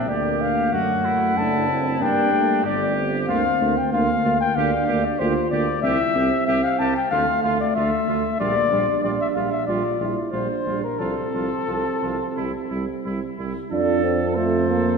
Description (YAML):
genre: classical, brass quintet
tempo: 93 BPM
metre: 4/4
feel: rubato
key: F major from 3.3 s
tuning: A4 = 443 Hz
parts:
  - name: dark cornet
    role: melody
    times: 0.0-15.0 s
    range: A4 to A5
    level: -23 LUFS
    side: left 5 dB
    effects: none
  - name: clear trumpet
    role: second line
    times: 0.0-15.0 s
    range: D4 to A4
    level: -30 LUFS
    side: right 5 dB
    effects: none
  - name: warm euphonium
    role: accompaniment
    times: 0.0-15.0 s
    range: A3 to F4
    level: -26 LUFS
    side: right 4 dB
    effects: none
  - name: warm tuba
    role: bass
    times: 0.0-15.0 s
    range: F#1 to G2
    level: -26 LUFS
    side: right 3 dB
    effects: none
  - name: dark French horn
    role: accompaniment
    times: 0.1-15.0 s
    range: F3 to F4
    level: -28 LUFS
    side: equal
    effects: none
room: wet concert hall reverb, RT60 2.1 s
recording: heard from further back in the room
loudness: -19 LUFS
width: side -5 dB against mid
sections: 0.0-13.7 A section; 13.7-15.0 B section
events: none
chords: 0.0 Gm; 0.7 F#m7b5; 2.0 Gm; 3.3 Bb/D; 4.6 Gm/D; 5.8 C; 7.1 Dm; 8.4 Gm7/Bb; 11.0 F/C; 12.4 C; 13.7 F